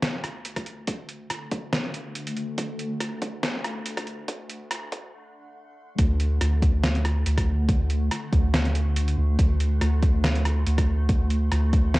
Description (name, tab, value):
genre	deep dubstep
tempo	141 BPM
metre	4/4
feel	swing 54% on 16ths, half-time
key	unclear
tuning	A4 = 440 Hz
part	granular cloud pad	sustained chords	0.8-12.0 s	D3 to A3	-35 LUFS	left 1 dB	built-in reverb, cassette tape
part	soft dub sub bass	bass	0.0-12.0 s	D2	-24 LUFS	equal	high-pass filter
part	trip hop sampler-style drum kit	drums	0.0-12.0 s	hi-hat, rim click, snare drum	-28 LUFS	equal	cassette tape
part	electronic kick drum	drums	0.6-11.8 s	none	-23 LUFS	equal	overdrive, high-pass filter on kick, cassette tape, high-pass filter on room
room	light reverb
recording	home recording on cassette, high-pass filter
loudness	-22 LUFS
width	side -20 dB against mid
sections	0.0-6.0 A section; 6.0-12.0 B section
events	build-up 0.0-6.0; filter sweep on ambient pad 0.0-6.0; break 5.1-6.0; drop 6.0-12.0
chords	0.0 D5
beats	0.03 0.45 | 0.88 1.30 1.73 2.15 | 2.58 3.00 3.43 3.86 | 4.28 4.71 5.13 5.56 | 5.98 6.41 6.83 7.26 | 7.69 8.11 8.54 8.96 | 9.39 9.81 10.24 10.66 | 11.09 11.52 11.94